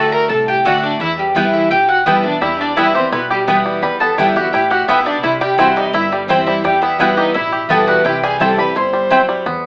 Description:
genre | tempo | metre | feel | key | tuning
bluegrass | 170 BPM | 4/4 | straight | E minor | A4 = 440 Hz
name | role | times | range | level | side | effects
mandolin | melody | 0.0-9.4 s | G4 to C6 | -17 LUFS | equal | none
clear fiddle | second line | 0.0-9.4 s | G3 to C5 | -19 LUFS | equal | none
picked steel-string acoustic guitar | accompaniment | 0.0-9.7 s | E2 to F#4 | -20 LUFS | equal | none
mandolin | stabs | 0.0-9.2 s | A3 to A5 | -15 LUFS | equal | none
upright bass | bass | 0.0-9.7 s | G1 to E2 | -32 LUFS | equal | none
bluegrass banjo | melody | 2.4-9.7 s | G3 to G4 | -19 LUFS | equal | none
room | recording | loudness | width
wet studio reverb, RT60 0.7 s | AM radio sound | -12 LUFS | side -31 dB against mid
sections
0.0-9.7 A section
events
none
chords
0.0 D; 1.0 Em; 5.2 C; 6.6 Em; 8.1 C

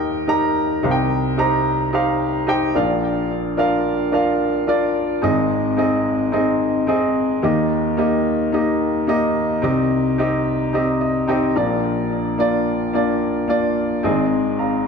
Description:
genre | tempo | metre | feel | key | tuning
pop | 109 BPM | 4/4 | straight | Eb major | A4 = 440 Hz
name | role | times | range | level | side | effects
warm upright piano | solo | 0.0-14.9 s | Ab1 to Bb5 | -17 LUFS | equal | ping-pong delay
room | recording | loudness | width
moderate large studio reverb, RT60 1.3 s | dark, warm production | -17 LUFS | side -5 dB against mid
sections
0.0-14.9 A section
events
upright piano fill 10.7-11.8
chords
0.0 Eb; 0.8 Cm; 2.8 Bb; 5.2 Ab; 7.4 Eb; 9.6 Cm; 11.6 Bb; 14.0 Ab

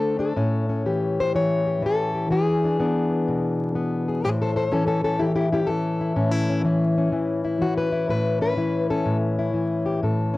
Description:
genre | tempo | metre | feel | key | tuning
acoustic country blues, solo or duo | 124 BPM | 4/4 | swing 65% on 8ths | A mixolydian | A4 = 440 Hz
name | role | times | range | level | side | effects
fingerpicked plugged-in steel-string acoustic guitar | solo | 0.0-10.4 s | A2 to C#5 | -20 LUFS | left 2 dB | none
room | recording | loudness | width
light reverb | home recording on cassette, vinyl crackle | -20 LUFS | side -18 dB against mid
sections
0.0-4.2 A section; 4.2-10.4 B section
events
steel-string acoustic guitar solo 4.2-10.4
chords
0.4 A7; 2.3 E7; 4.2 A

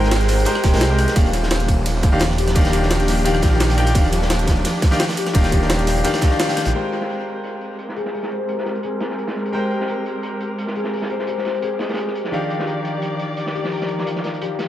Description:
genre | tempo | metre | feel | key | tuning
liquid drum and bass | 172 BPM | 4/4 | straight | Ab lydian | A4 = 440 Hz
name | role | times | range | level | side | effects
bright concert grand piano | accompaniment | 0.0-14.7 s | Eb3 to G5 | -24 LUFS | left 1 dB | dub echo
dark chamber string section | sustained chords | 0.0-14.7 s | Eb3 to G5 | -27 LUFS | right 1 dB | sidechain pumping, low-pass filter
concert harp | arpeggios | 0.0-14.7 s | F4 to Eb5 | -26 LUFS | left 4 dB | low-pass filter, dub echo
swelling detuned saw bass | bass | 0.0-6.7 s | Eb1 to C2 | -19 LUFS | equal | none
crunchy breakbeat drum kit | drums | 0.0-14.7 s | hi-hat, snare drum | -30 LUFS | equal | high-pass filter on hats, low-pass filter on hats, studio ambience, high-pass filter on snare, low-pass filter on snare, high-pass filter on room, low-pass filter on room, dub echo
jungle sampler-style drum kit | drums | 0.1-6.8 s | crash cymbal, hi-hat, ride cymbal, rim click, snare drum | -25 LUFS | right 1 dB | overdrive, low-pass filter on snare, studio ambience, low-pass filter on hats, low-pass filter on cymbals, dub echo
electronic kick drum | drums | 0.6-6.3 s | none | -16 LUFS | equal | overdrive, studio ambience
room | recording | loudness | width
light reverb, studio ambience | echo-heavy mix | -17 LUFS | side -13 dB against mid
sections
0.0-6.7 A section; 6.7-14.7 B section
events
drop 0.0-6.7; band accent 6.4; filter sweep on string section 6.7-14.7; filter sweep on harp 6.7-14.7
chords
0.0 Abmaj9; 1.2 Ebmaj9; 6.7 Abmaj9; 12.3 Ebmaj9

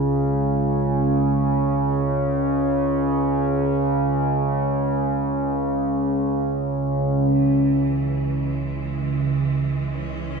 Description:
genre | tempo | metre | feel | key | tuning
dark ambient drone | free time | none | none | C# minor | A4 = 440 Hz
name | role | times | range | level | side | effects
analog drone | drone | 0.0-10.4 s | C#2 to C#3 | -19 LUFS | right 1 dB | chorus
bright studio cello section | sustained chords | 7.3-10.4 s | E3 to C#4 | -34 LUFS | equal | shimmer reverb
room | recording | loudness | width
wet cathedral reverb, RT60 6.8 s | in a vast, echoing space | -19 LUFS | side -4 dB against mid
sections
0.0-7.3 A section; 7.3-10.4 B section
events
none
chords
0.0 N.C.; 7.3 C#m

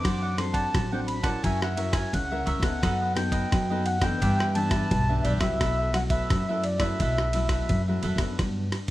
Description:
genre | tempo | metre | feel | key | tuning
samba and choro | 86 BPM | 4/4 | straight | unclear | A4 = 440 Hz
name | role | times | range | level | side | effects
mellow accordion | melody | 0.0-7.8 s | D5 to D6 | -30 LUFS | equal | none
cavaquinho | accompaniment | 0.0-8.4 s | D4 to F#5 | -35 LUFS | right 3 dB | none
nylon-string guitar | accompaniment | 0.0-8.9 s | F#2 to A#4 | -30 LUFS | left 2 dB | none
upright bass | bass | 0.0-8.7 s | A1 to G2 | -28 LUFS | equal | none
dusty soul sampler-style drum kit | drums | 0.0-8.9 s | kick drum, ride cymbal, rim click | -29 LUFS | equal | none
room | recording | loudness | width
moderate studio reverb, RT60 0.6 s | none | -23 LUFS | side -16 dB against mid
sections
0.0-8.4 A section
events
none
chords
0.0 D7/F#; 1.4 F#7; 2.8 B7/F#; 4.2 Em7/G; 5.6 B7sus4; 8.4 Gmaj7

